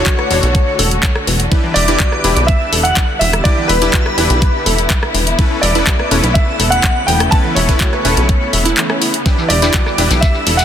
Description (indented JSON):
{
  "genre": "progressive house",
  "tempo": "124 BPM",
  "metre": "4/4",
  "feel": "straight",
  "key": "E dorian",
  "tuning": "A4 = 440 Hz",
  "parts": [
    { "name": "clear concert grand piano", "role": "melody", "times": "0.0-10.6 s", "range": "B4 to A5", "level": "-20 LUFS", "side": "right 1 dB", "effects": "digital delay" },
    { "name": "airy dreamy lead", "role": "second line", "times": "0.0-10.6 s", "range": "B4 to A5", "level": "-22 LUFS", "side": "left 1 dB", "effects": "chorus, phaser, sidechain pumping, digital delay" },
    { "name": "rich symphonic string section", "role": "sustained chords", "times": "0.0-10.6 s", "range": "C#3 to F#4", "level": "-22 LUFS", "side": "equal", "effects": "vintage 12-bit sampler grit, sidechain pumping" },
    { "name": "supersaw stab", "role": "stabs", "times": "0.0-10.6 s", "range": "C#3 to C#5", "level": "-21 LUFS", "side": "left 2 dB", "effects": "lush chorus, cassette tape, sidechain pumping, digital delay" },
    { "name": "plucky analog bass", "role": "bass", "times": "0.0-10.6 s", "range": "E1 to B1", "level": "-16 LUFS", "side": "equal", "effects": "sidechain pumping" },
    { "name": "glassy wavetable pluck", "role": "arpeggios", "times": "0.1-10.6 s", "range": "E3 to E5", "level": "-22 LUFS", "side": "right 2 dB", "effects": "chorus, sidechain pumping, digital delay" },
    { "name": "electronic kick drum", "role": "drums", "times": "0.1-10.3 s", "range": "none", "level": "-14 LUFS", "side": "equal", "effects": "overdrive" },
    { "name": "house drum kit", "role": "drums", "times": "0.1-10.6 s", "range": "handclaps, hi-hat, ride cymbal, rim click", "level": "-18 LUFS", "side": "left 1 dB", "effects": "none" },
    { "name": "shekere", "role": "percussion", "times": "9.3-10.6 s", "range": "none", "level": "-24 LUFS", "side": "left 4 dB", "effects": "none" }
  ],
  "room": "light reverb",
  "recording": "dense, heavily limited modern master",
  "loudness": "-11 LUFS",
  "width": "side -9 dB against mid",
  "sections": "0.0-10.6 A section",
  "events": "none",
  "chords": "0.0 Dmaj7/E; 1.5 Em7; 5.4 Aadd9/E; 9.3 Em7"
}